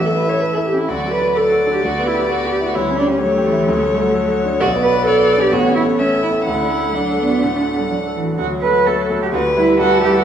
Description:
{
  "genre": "quick classical-period movement for piano quartet",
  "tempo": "128 BPM",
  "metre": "4/4",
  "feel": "straight",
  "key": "D major",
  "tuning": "A4 = 437 Hz",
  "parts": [
    { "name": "clear violin", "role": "melody", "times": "0.0-10.2 s", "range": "A4 to F#5", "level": "-21 LUFS", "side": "left 4 dB", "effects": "none" },
    { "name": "rich cello", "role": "second line", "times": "0.0-10.2 s", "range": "E3 to B4", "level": "-21 LUFS", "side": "right 4 dB", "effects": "none" },
    { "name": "bright grand piano", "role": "accompaniment", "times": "0.0-10.2 s", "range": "A1 to D5", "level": "-19 LUFS", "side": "left 1 dB", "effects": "none" },
    { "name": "rich viola", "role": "accompaniment", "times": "0.1-10.2 s", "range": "F#3 to C#5", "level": "-19 LUFS", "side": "right 2 dB", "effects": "none" }
  ],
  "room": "wet recital hall reverb, RT60 1.7 s",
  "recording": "small room ambience",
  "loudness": "-14 LUFS",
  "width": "side -9 dB against mid",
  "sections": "0.0-8.4 A section; 8.4-10.2 B section",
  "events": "none",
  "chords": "0.0 A; 0.9 D; 1.8 Em/D; 2.8 A7/D; 3.7 D; 4.6 Bm; 5.5 A; 6.5 D; 9.3 Em/D",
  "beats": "0.41 | 0.89 1.36 1.82 2.29 | 2.75 3.22 3.68 4.14 | 4.60 5.06 5.52 5.99 | 6.47 6.95 7.43 7.91 | 8.39 8.86 9.33 9.79"
}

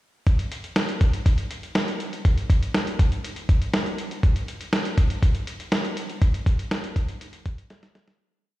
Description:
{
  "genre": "pop",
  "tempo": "121 BPM",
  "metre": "4/4",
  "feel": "straight",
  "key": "none",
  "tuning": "none",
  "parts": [
    { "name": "lo-fi sampler-style drum kit", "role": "drums", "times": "0.3-8.2 s", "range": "hi-hat, kick drum, snare drum", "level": "-21 LUFS", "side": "equal", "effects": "none" }
  ],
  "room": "moderate plate reverb, RT60 2.0 s",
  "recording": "played on a big sound system in a bare room, stone room reverb",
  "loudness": "-21 LUFS",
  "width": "side -16 dB against mid",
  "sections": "0.3-8.2 verse",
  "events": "fade-out 6.2-8.2; drum fill 7.7-8.2",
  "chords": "none",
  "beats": "| 0.27 0.76 1.26 1.75 | 2.25 2.75 3.24 3.74 | 4.23 4.73 5.22 5.72 | 6.22 6.71 7.21 7.70"
}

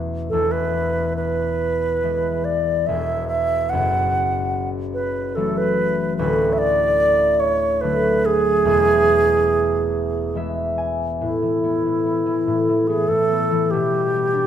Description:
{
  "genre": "celtic folk, Celtic slow air",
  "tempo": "72 BPM",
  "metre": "3/4",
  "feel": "rubato",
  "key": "unclear",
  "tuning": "A4 = 442 Hz",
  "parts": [
    { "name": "baroque flute", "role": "melody", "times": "0.0-14.5 s", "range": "E4 to F#5", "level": "-19 LUFS", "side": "right 1 dB", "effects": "none" },
    { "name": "concert harp", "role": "accompaniment", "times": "0.0-14.5 s", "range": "D1 to G#5", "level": "-22 LUFS", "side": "left 1 dB", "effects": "none" }
  ],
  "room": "moderate recital hall reverb, RT60 1.7 s",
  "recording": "minimal, uncompressed stereo recording",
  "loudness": "-17 LUFS",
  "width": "side -9 dB against mid",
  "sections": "0.0-11.2 A section; 11.2-14.5 B section",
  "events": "harp fill 9.9-11.2",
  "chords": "0.3 E; 3.7 F#m7; 6.2 D; 8.7 E; 11.2 Asus2; 13.7 G/B",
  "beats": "0.33 | 1.19 2.05 2.90 | 3.74 4.56 5.38 | 6.19 7.01 7.84 | 8.66 9.50 10.36 | 11.22 12.06 12.89 | 13.72"
}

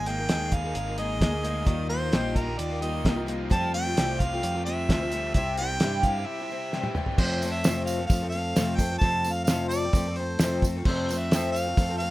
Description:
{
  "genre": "folk rock and heartland rock",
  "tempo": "131 BPM",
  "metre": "4/4",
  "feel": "straight",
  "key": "F major",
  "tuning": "A4 = 442 Hz",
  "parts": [
    { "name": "warm harmonica", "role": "melody", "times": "0.0-12.1 s", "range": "Bb4 to A5", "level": "-30 LUFS", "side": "equal", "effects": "none" },
    { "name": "picked twelve-string acoustic guitar", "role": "accompaniment", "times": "0.0-12.1 s", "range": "F2 to A4", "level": "-31 LUFS", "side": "left 2 dB", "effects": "wide subtle chorus" },
    { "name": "overdriven electric guitar", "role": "riff", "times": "0.0-7.2 s", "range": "C3 to Ab4", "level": "-35 LUFS", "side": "equal", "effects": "none" },
    { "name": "fingered electric bass", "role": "bass", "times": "0.0-12.1 s", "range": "Ab1 to G2", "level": "-31 LUFS", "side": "equal", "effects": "none" },
    { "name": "cloth-damped thuddy drum kit", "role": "drums", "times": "0.1-12.1 s", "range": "crash cymbal, hi-hat, kick drum, snare drum, toms", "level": "-26 LUFS", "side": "equal", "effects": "none" },
    { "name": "tambourine", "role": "percussion", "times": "7.4-11.9 s", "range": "none", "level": "-39 LUFS", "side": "right 6 dB", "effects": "none" }
  ],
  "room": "little or no reverb",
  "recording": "rough home demo mix",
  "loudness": "-24 LUFS",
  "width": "side -17 dB against mid",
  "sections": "0.0-7.2 A section; 7.2-12.1 B section",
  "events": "break 6.3-7.2; drum fill 6.7-7.2",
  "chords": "0.0 Absus2; 1.7 Ebadd9; 3.5 Fadd9; 5.3 C; 7.2 F",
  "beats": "0.29 0.75 1.21 | 1.67 2.13 2.59 3.05 | 3.51 3.97 4.43 4.89 | 5.35 5.81 6.27 6.73 | 7.19 7.64 8.10 8.56 | 9.02 9.48 9.94 10.39 | 10.85 11.31 11.77"
}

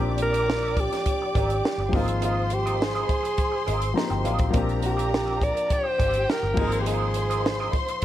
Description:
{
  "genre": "lush 1970s-style soul",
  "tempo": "103 BPM",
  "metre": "4/4",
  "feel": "straight",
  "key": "Bb mixolydian",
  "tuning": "A4 = 440 Hz",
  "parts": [
    { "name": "rich symphonic violin section", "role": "second line", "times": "0.0-8.0 s", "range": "G4 to D6", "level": "-31 LUFS", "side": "left 1 dB", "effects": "none" },
    { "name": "warm grand piano", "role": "accompaniment", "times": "0.0-8.0 s", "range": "F3 to Bb5", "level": "-31 LUFS", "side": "left 4 dB", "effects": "none" },
    { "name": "electric guitar through a small old amp", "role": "riff", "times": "0.0-7.9 s", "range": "C4 to Eb5", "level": "-34 LUFS", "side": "right 4 dB", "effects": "wah" },
    { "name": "vintage muted fingered electric bass", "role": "bass", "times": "0.0-7.7 s", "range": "G1 to Bb1", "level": "-28 LUFS", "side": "equal", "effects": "none" },
    { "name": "warm alto saxophone", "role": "melody", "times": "0.2-7.7 s", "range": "F4 to D5", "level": "-27 LUFS", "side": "right 1 dB", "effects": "none" },
    { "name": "compact cocktail drum kit", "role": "drums", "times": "0.2-8.0 s", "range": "crash cymbal, hi-hat, kick drum, snare drum", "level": "-27 LUFS", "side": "right 1 dB", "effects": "none" }
  ],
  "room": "studio ambience",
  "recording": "none",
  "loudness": "-22 LUFS",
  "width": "side -12 dB against mid",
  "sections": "0.0-8.0 A section",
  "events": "grand piano fill 3.7-4.5",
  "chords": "0.0 Bb69; 1.9 Ab69; 4.5 Bb69; 6.6 Ab69",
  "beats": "0.48 1.06 1.64 | 2.22 2.80 3.38 3.96 | 4.54 5.12 5.70 6.29 | 6.87 7.45 8.03"
}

